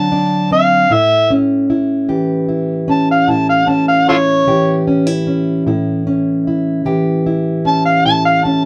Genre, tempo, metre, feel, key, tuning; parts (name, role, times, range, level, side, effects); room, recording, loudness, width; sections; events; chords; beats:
acoustic country blues, solo or duo; 50 BPM (dotted quarters); 12/8; straight; A4 = 439 Hz
overdriven harmonica; melody; 0.0-8.6 s; F4 to A5; -15 LUFS; equal
fingerpicked plugged-in old ladder-braced acoustic guitar; accompaniment; 0.0-8.7 s; A2 to G4; -17 LUFS; equal
wet booth ambience, RT60 0.2 s; heard from further back in the room; -14 LUFS; mono
0.0-8.7 A section
0.0 D7; 0.9 A7
| 0.91 2.10 3.28 4.47 | 5.66 6.85 8.04